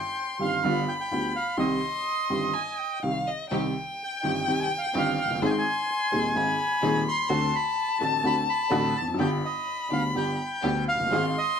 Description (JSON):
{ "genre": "tango", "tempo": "126 BPM", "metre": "4/4", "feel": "rubato", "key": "C harmonic minor", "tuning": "A4 = 444 Hz", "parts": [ { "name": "bandoneon", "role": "melody", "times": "0.0-11.6 s", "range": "Eb5 to C6", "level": "-28 LUFS", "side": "right 2 dB", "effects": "plate reverb" }, { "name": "warm violin", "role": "second line", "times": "0.0-11.6 s", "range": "Eb5 to C6", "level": "-30 LUFS", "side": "left 4 dB", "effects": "none" }, { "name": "clear upright piano", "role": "accompaniment", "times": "0.4-11.3 s", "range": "Eb1 to Ab4", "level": "-27 LUFS", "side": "equal", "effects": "none" }, { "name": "warm studio string section", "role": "stabs", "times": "3.5-11.3 s", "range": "B3 to Ab4", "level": "-34 LUFS", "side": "right 1 dB", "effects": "none" } ], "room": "moderate studio reverb, RT60 0.6 s", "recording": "close, detailed microphones", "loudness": "-24 LUFS", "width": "side -7 dB against mid", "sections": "0.0-3.5 A section; 3.5-11.6 A section", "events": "none", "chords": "0.0 Cm/G; 0.6 G7; 1.6 Cm; 5.4 Ab; 7.3 D7; 9.2 G", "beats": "0.17 0.64 1.11 | 1.58 2.06 2.54 3.03 | 3.51 3.99 4.46 4.93 | 5.41 5.88 6.35 6.82 | 7.29 7.76 8.23 8.71 | 9.19 9.66 10.14 10.63 | 11.11 11.59" }